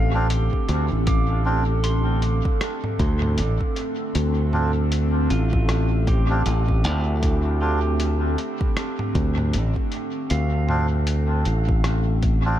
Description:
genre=ambient dub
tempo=78 BPM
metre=4/4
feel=swing 59% on 16ths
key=D minor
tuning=A4 = 442 Hz
part: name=warbly tape-like pad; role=sustained chords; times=0.0-12.6 s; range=D3 to A4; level=-28 LUFS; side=equal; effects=chorus, built-in reverb, phaser
part: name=pedal steel guitar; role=arpeggios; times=0.0-12.6 s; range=E3 to D6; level=-33 LUFS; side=right 3 dB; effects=dub echo
part: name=modern bright fingered electric bass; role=bass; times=0.0-12.6 s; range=A1 to D2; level=-21 LUFS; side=equal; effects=tube saturation
part: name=melodica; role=stabs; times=0.1-12.6 s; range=C4 to F4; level=-30 LUFS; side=right 1 dB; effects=dub echo
part: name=lo-fi sampler-style drum kit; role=drums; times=0.3-12.4 s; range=hi-hat, rim click, toms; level=-32 LUFS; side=equal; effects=studio reverb, dub echo
part: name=electronic kick drum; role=drums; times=0.5-12.4 s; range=none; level=-23 LUFS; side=equal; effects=studio reverb
room=little or no reverb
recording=echo-heavy mix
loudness=-19 LUFS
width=side -12 dB against mid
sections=0.0-12.6 A section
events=none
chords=0.0 Dm7

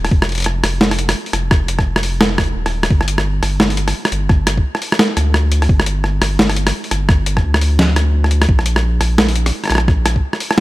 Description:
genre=half-time drum and bass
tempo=172 BPM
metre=4/4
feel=swing 59% on 16ths, half-time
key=unclear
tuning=A4 = 439 Hz
part: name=saturated sub bass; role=bass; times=0.0-10.2 s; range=Eb1 to D2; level=-16 LUFS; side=equal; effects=none
part: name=boom bap sampler-style drum kit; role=drums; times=0.0-10.6 s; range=hi-hat, rim click, snare drum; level=-16 LUFS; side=equal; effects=small room ambience
part: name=electronic kick drum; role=drums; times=0.1-10.2 s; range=none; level=-14 LUFS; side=equal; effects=small room ambience
room=little or no reverb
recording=none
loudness=-13 LUFS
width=side -18 dB against mid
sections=0.0-10.6 A section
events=none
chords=none

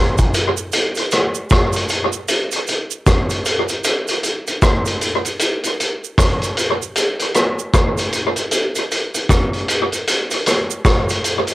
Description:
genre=reggae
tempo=77 BPM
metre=4/4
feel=swing 61% on 16ths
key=none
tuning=none
part: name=vintage drum kit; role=drums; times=0.2-11.5 s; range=hi-hat, kick drum, rim click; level=-15 LUFS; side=equal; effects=cassette tape, tape echo
part: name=cabasa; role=percussion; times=0.2-11.5 s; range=none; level=-27 LUFS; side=right 9 dB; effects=none
room=light reverb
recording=home recording on cassette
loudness=-15 LUFS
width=side -18 dB against mid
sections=0.0-11.5 A section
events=none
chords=none

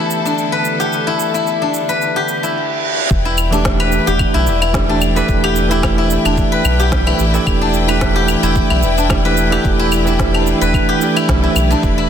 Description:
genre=organic downtempo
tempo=110 BPM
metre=4/4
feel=swing 55% on 16ths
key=E minor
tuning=A4 = 440 Hz
part: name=bell-like tine electric piano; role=accompaniment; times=0.0-12.1 s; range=E3 to G4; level=-19 LUFS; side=right 4 dB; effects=fast stereo tremolo, sidechain pumping, ping-pong delay
part: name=clear studio string section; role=sustained chords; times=0.0-12.1 s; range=D3 to B5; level=-23 LUFS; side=left 3 dB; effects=sidechain pumping
part: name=steel-string zither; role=arpeggios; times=0.0-12.1 s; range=D4 to B4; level=-18 LUFS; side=left 3 dB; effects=ping-pong delay
part: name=electronic shaker, claves and snare drum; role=drums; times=0.1-12.0 s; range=none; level=-22 LUFS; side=left 1 dB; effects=none
part: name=reverse cymbal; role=sound effects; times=2.5-3.1 s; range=none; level=-22 LUFS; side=right 6 dB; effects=none
part: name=round analog bass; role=bass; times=3.1-12.1 s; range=E1 to B1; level=-18 LUFS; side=equal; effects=sidechain pumping
part: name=electronic kick drum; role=drums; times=3.1-12.0 s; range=none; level=-19 LUFS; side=equal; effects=overdrive
room=light reverb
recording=dense, heavily limited modern master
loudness=-12 LUFS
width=side -8 dB against mid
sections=0.0-3.1 A section; 3.1-12.1 B section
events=filter sweep on string section 0.0-3.1; reverse cymbal 2.5-3.1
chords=0.0 Em7

